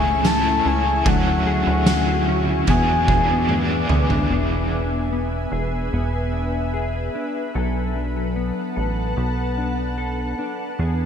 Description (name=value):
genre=dream pop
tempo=74 BPM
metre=4/4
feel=straight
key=E mixolydian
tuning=A4 = 439 Hz
part: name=soft octave-layered synth lead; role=melody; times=0.0-3.9 s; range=F#5 to A5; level=-23 LUFS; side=left 3 dB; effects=chorus, ping-pong delay
part: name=overdriven electric guitar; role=accompaniment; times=0.0-4.8 s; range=D3 to G#4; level=-27 LUFS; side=right 3 dB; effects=tremolo, ensemble chorus
part: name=ethereal airy pad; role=sustained chords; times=0.0-11.1 s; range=A3 to D6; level=-28 LUFS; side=equal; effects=ensemble chorus, built-in reverb
part: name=mellow electric guitar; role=arpeggios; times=0.0-11.1 s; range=F#3 to A4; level=-25 LUFS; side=left 4 dB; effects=analog chorus, ping-pong delay
part: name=plucky analog bass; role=bass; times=0.0-11.1 s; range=E1 to E2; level=-24 LUFS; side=right 1 dB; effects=none
part: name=oversized low-tuned drum kit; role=drums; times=0.2-4.3 s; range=kick drum, ride cymbal, snare drum, tambourine, toms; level=-23 LUFS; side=right 1 dB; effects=gated reverb
room=moderate plate reverb, RT60 3.6 s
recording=bright 1980s-style digital production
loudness=-19 LUFS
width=side -8 dB against mid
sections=0.0-4.3 A section; 4.3-11.1 B section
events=drum fill 3.5-4.3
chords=0.0 Amaj7/C#; 1.1 Dmaj9#11; 2.7 E7; 7.5 Bm7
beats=0.25 | 1.06 1.87 2.68 3.49 | 4.30 5.11 5.92 6.73 | 7.54 8.35 9.16 9.98 | 10.79